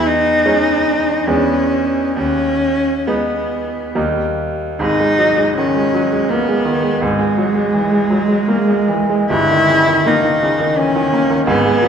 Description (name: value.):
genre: classical, romantic duo for cello and grand piano.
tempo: 65-87 BPM.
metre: 3/4.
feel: rubato.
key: G# minor.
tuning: A4 = 436 Hz.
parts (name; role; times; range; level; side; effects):
warm cello; melody; 0.0-11.9 s; G#3 to E4; -15 LUFS; left 1 dB; none.
bright concert grand piano; accompaniment; 0.0-11.9 s; G1 to D#4; -17 LUFS; right 2 dB; none.
room: wet concert hall reverb, RT60 1.9 s.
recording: small room ambience.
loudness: -13 LUFS.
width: side -7 dB against mid.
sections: 0.0-4.8 A section; 4.8-11.9 B section.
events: none.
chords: 0.0 C#m/E; 1.3 E7; 2.2 G#m/D#; 4.0 D#; 4.8 G#m; 7.0 F#9/G#; 9.3 D#7/G.